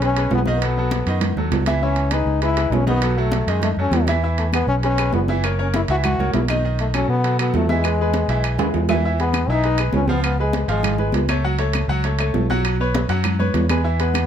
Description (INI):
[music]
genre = latin, salsa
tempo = 200 BPM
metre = 4/4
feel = straight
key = E major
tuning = A4 = 440 Hz
[part]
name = clear trombone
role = melody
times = 0.0-11.3, 14.0-14.3 s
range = G#3 to F#4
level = -23 LUFS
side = left 3 dB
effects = slapback echo
[part]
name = bright baby grand piano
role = accompaniment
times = 0.0-14.2 s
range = D#3 to F#5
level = -24 LUFS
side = right 1 dB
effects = none
[part]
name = fingered electric bass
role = bass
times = 0.0-14.2 s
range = F#1 to B2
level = -21 LUFS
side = equal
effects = none
[part]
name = congas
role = percussion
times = 0.0-14.3 s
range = none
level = -26 LUFS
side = right 1 dB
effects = none
[part]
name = timbales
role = percussion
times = 0.0-14.3 s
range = none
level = -27 LUFS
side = right 6 dB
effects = none
[part]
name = claves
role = percussion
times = 4.5-14.3 s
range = none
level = -30 LUFS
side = left 4 dB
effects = none
[sound]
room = light reverb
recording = close, detailed microphones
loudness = -17 LUFS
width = side -9 dB against mid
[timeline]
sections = 0.0-9.0 A section; 9.0-14.3 B section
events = drum fill 8.1-9.0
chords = 0.0 Emaj7 (rootless); 0.6 B9; 1.8 C#m9; 3.0 B9; 4.2 E6; 5.4 F#7; 6.6 B7; 7.8 E; 10.2 C#7; 11.4 F#m/C#; 12.6 Bsus2